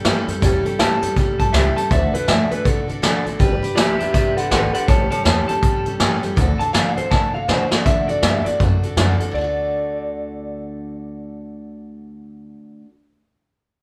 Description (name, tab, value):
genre	rockabilly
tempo	161 BPM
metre	4/4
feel	swing 62% on 8ths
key	D major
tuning	A4 = 439 Hz
part	picked steel-string acoustic guitar	accompaniment	0.0-12.9 s	A2 to B4	-28 LUFS	equal	none
part	upright bass	bass	0.0-12.5 s	G1 to D3	-26 LUFS	equal	none
part	vintage brush drum kit	drums	0.0-9.3 s	hi-hat, kick drum, snare drum	-21 LUFS	equal	none
part	electric guitar through a small old amp	melody	0.8-12.6 s	G4 to A5	-25 LUFS	equal	none
room	light reverb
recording	band playing live in one room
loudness	-18 LUFS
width	mono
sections	0.0-7.9 A section; 7.9-9.3 B section; 9.3-12.3 C section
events	drum fill 7.1-7.9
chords	0.0 A7; 1.9 D; 3.4 G; 4.9 A7; 6.4 D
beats	0.05 | 0.42 0.79 1.16 1.54 | 1.91 2.28 2.65 3.02 | 3.40 3.77 4.14 4.51 | 4.88 5.26 5.63 6.00 | 6.37 6.74 7.12 7.49 | 7.86 8.23 8.60 8.97 | 9.35 9.72 10.09 10.46 | 10.83 11.20 11.57 11.94